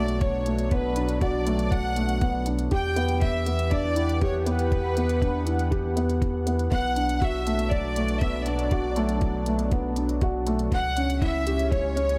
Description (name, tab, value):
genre	piano and strings electronica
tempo	120 BPM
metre	4/4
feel	straight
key	B minor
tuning	A4 = 439 Hz
part	clear studio violin section	melody	0.0-12.2 s	B4 to G5	-32 LUFS	equal	none
part	lush unison pad	sustained chords	0.0-12.2 s	B2 to F#5	-35 LUFS	equal	chorus, sidechain pumping
part	felt-muted upright piano	riff	0.0-12.2 s	A3 to C#5	-30 LUFS	equal	delay
part	warm sub bass	bass	0.0-12.2 s	B1 to E2	-31 LUFS	equal	sidechain pumping
part	electronic hi-hat	drums	0.1-12.2 s	none	-43 LUFS	equal	studio reverb
part	electronic kick drum	drums	0.2-11.8 s	none	-28 LUFS	equal	studio reverb
room	light reverb, digital ambience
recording	none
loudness	-25 LUFS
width	mono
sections	0.0-12.2 A section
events	none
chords	0.0 Bm7; 2.7 Em7; 6.7 Bm7; 10.7 C#dim